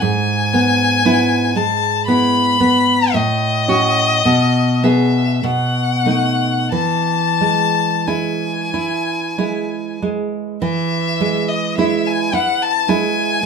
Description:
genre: romantic duo for violin and classical guitar.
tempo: 44-58 BPM.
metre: 3/4.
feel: rubato.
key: E major.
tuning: A4 = 442 Hz.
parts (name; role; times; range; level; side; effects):
clear violin; melody; 0.0-13.5 s; D#5 to B5; -18 LUFS; left 5 dB; none.
nylon-string guitar; accompaniment; 0.0-13.5 s; G#2 to G#4; -17 LUFS; right 2 dB; none.
room: wet small room reverb, RT60 0.6 s.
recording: minimal, uncompressed stereo recording.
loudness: -14 LUFS.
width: side -6 dB against mid.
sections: 0.0-10.6 A section; 10.6-13.5 A section.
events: none.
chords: 0.0 E/G#; 3.1 F#m/A; 4.3 E/B; 5.4 B7; 6.7 E.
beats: | 0.01 1.04 2.08 | 3.14 4.25 5.43 | 6.72 8.07 9.38 | 10.62 11.77 12.89.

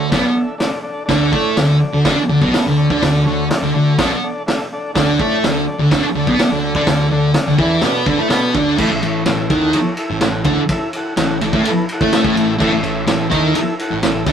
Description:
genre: garage rock duo or trio.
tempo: 125 BPM.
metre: 4/4.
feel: straight.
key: unclear.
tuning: A4 = 440 Hz.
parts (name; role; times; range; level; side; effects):
combo organ; sustained chords; 0.0-14.3 s; D4 to F#5; -24 LUFS; left 2 dB; none.
thick fuzz guitar; riff; 0.0-14.3 s; A2 to B4; -15 LUFS; right 1 dB; distortion.
fuzz picked electric bass; bass; 0.0-14.3 s; A1 to B2; -23 LUFS; left 1 dB; overdrive.
vintage drum kit; drums; 0.1-14.3 s; crash cymbal, hi-hat, kick drum, ride cymbal, snare drum; -20 LUFS; equal; none.
room: light reverb.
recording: rough rehearsal-room recording, tube saturation.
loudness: -14 LUFS.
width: side -8 dB against mid.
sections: 0.0-8.8 A section; 8.8-14.3 B section.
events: none.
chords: 0.0 D5; 8.8 A5.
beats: 0.13 0.61 | 1.10 1.58 2.06 2.55 | 3.03 3.51 3.99 4.47 | 4.96 5.44 5.92 6.40 | 6.88 7.36 7.84 8.32 | 8.79 9.27 9.75 10.23 | 10.71 11.18 11.66 12.13 | 12.61 13.09 13.56 14.04.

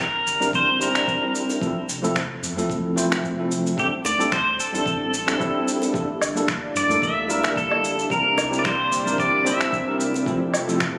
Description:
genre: sunset chillout.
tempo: 111 BPM.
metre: 4/4.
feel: swing 55% on 16ths.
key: unclear.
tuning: A4 = 441 Hz.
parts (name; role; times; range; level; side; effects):
pedal steel guitar; melody; 0.0-10.0 s; G4 to E5; -25 LUFS; equal; delay.
round analog bass; bass; 0.0-11.0 s; D1 to G2; -39 LUFS; equal; none.
electronic finger snaps, cabasa and woodblock; drums; 0.0-10.9 s; none; -30 LUFS; equal; studio reverb.
barky tine electric piano; accompaniment; 0.4-10.8 s; F3 to C5; -27 LUFS; equal; vintage 12-bit sampler grit, delay.
electronic kick drum; drums; 0.5-10.9 s; none; -35 LUFS; equal; studio reverb.
bongos; percussion; 1.5-10.2 s; none; -34 LUFS; equal; none.
lush unison pad; sustained chords; 5.9-11.0 s; C3 to A5; -31 LUFS; equal; chorus.
room: moderate scoring stage reverb, RT60 2.0 s.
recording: recorded on a phone in the room, studio reverb, compression.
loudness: -22 LUFS.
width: mono.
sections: 0.0-11.0 A section.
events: none.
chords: 0.0 C9; 1.6 Fmaj7; 3.8 D9sus4; 5.9 Gm69; 8.1 C9; 10.3 Fmaj7.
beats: 0.53 1.07 | 1.61 2.16 2.70 3.24 | 3.78 4.32 4.86 5.40 | 5.94 6.48 7.02 7.56 | 8.10 8.64 9.18 9.72 | 10.26 10.80.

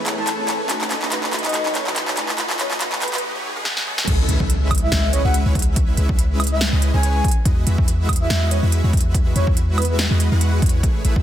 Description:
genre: future bass.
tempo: 142 BPM.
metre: 4/4.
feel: swing 55% on 16ths, half-time.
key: unclear.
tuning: A4 = 440 Hz.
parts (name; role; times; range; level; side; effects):
dark studio string section; sustained chords; 0.0-3.2 s; D#3 to B4; -36 LUFS; equal; sidechain pumping.
dense compressed supersaw; riff; 0.0-11.2 s; G#3 to F#5; -26 LUFS; right 1 dB; sidechain pumping, ping-pong delay.
riser and impact; sound effects; 0.0-5.8 s; none; -29 LUFS; equal; none.
big-room dance drum kit; drums; 0.1-11.1 s; crash cymbal, handclaps, hi-hat, snare drum, woodblock; -23 LUFS; right 1 dB; none.
breathy flute-like synth lead; melody; 0.2-10.0 s; B4 to A5; -26 LUFS; left 1 dB; lush chorus, sidechain pumping, ping-pong delay.
warm 808-style bass; bass; 4.1-11.2 s; A1 to E2; -18 LUFS; equal; sidechain pumping.
electronic kick drum; drums; 4.1-11.2 s; none; -19 LUFS; equal; none.
room: light reverb.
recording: dense, heavily limited modern master, high-pass filter.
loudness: -17 LUFS.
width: side -11 dB against mid.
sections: 0.0-4.1 A section; 4.1-11.2 B section.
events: build-up 0.0-4.1; drum fill 0.0-3.2, 3.7-4.1; riser 0.0-4.1; filter sweep on supersaw synth 0.0-4.1; filter sweep on soft synth lead 0.0-4.1; filter sweep 0.0-4.1; drop 4.1-11.2; impact 4.1-5.8.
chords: 0.0 Amaj9; 0.7 B9; 4.1 C#m9; 7.2 Emaj9.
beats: 0.27 | 0.69 1.12 1.54 1.96 | 2.38 2.81 3.23 3.65 | 4.08 4.50 4.92 5.34 | 5.76 6.19 6.61 7.03 | 7.46 7.88 8.30 8.72 | 9.14 9.57 9.99 10.41 | 10.84.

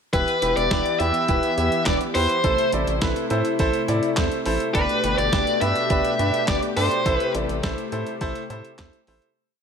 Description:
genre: synth-pop.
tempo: 104 BPM.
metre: 4/4.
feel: straight.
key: A minor.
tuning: A4 = 441 Hz.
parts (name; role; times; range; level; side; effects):
high-gain lead guitar; melody; 0.1-7.3 s; B4 to E5; -23 LUFS; left 1 dB; distortion, ping-pong delay.
clear baby grand piano; accompaniment; 0.1-9.3 s; D4 to D5; -26 LUFS; right 2 dB; none.
brassy analog pad; sustained chords; 0.1-9.3 s; B2 to G4; -28 LUFS; left 2 dB; chorus.
rubbery square bass; bass; 0.1-9.2 s; E1 to A2; -27 LUFS; equal; none.
clean 12-bit digital drum machine; drums; 0.1-9.4 s; handclaps, hi-hat, kick drum, snare drum; -26 LUFS; equal; none.
room: moderate concert hall reverb, RT60 1.9 s, digital ambience.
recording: none.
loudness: -19 LUFS.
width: side -6 dB against mid.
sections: 0.1-9.4 chorus.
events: fade-out 7.1-9.4.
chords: 0.1 Em; 2.4 Am; 4.7 Gadd9; 7.1 Am7.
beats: | 0.13 0.71 1.29 1.86 | 2.44 3.02 3.60 4.17 | 4.75 5.33 5.90 6.48 | 7.06 7.63 8.21 8.79.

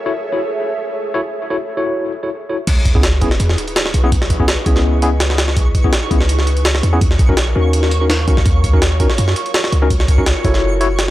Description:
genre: drum and bass, jungle.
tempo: 166 BPM.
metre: 4/4.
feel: swing 53% on 16ths.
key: C# minor.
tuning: A4 = 440 Hz.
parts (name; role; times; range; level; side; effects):
ethereal airy pad; sustained chords; 0.0-10.6 s; G#4 to E5; -25 LUFS; right 1 dB; ensemble chorus, built-in reverb, vintage 12-bit sampler grit.
tine electric piano; stabs; 0.1-10.9 s; B3 to C#5; -20 LUFS; left 2 dB; medium stereo tremolo, low-pass filter, dub echo.
warm 808-style bass; bass; 2.7-11.1 s; F#1 to F#2; -15 LUFS; equal; none.
jungle sampler-style drum kit; drums; 2.7-11.1 s; crash cymbal, hi-hat, kick drum, snare drum; -16 LUFS; equal; none.
sub drop; sound effects; 2.7-4.1 s; none; -22 LUFS; equal; none.
twinkling granular texture; texture; 2.9-11.1 s; C#6; -29 LUFS; right 6 dB; built-in reverb.
room: little or no reverb.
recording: dry, gritty hardware recording.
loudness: -13 LUFS.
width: side -15 dB against mid.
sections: 0.0-2.7 A section; 2.7-11.1 B section.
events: drop 2.7-11.1; impact 2.7-4.1.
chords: 0.0 F#m7; 2.7 C#m7; 7.0 D#m7.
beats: 0.14 0.51 0.87 | 1.23 1.59 1.95 2.31 | 2.67 3.04 3.40 3.76 | 4.12 4.48 4.84 5.21 | 5.57 5.93 6.29 6.65 | 7.01 7.37 7.74 8.10 | 8.46 8.82 9.18 9.54 | 9.90 10.27 10.63 10.99.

